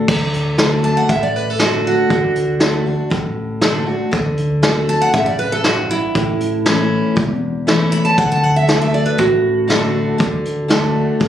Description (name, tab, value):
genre	honky-tonk and classic country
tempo	119 BPM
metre	4/4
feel	straight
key	D major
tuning	A4 = 441 Hz
part	picked steel-string acoustic guitar	accompaniment	0.0-11.3 s	E2 to F#4	-19 LUFS	left 3 dB	none
part	upright bass	bass	0.1-11.3 s	E1 to D2	-22 LUFS	equal	none
part	vintage brush drum kit	drums	0.1-11.3 s	crash cymbal, hi-hat, kick drum, snare drum	-19 LUFS	equal	none
part	picked steel-string acoustic guitar	melody	0.8-10.7 s	E4 to B5	-18 LUFS	right 2 dB	none
part	clear grand piano	accompaniment	8.7-11.1 s	D4 to A4	-26 LUFS	right 5 dB	none
room	light reverb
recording	recorded on a phone in the room, club reverb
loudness	-14 LUFS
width	side -10 dB against mid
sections	0.1-11.3 A section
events	steel-string acoustic guitar solo 0.1-11.3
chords	0.1 D; 6.2 A; 8.2 D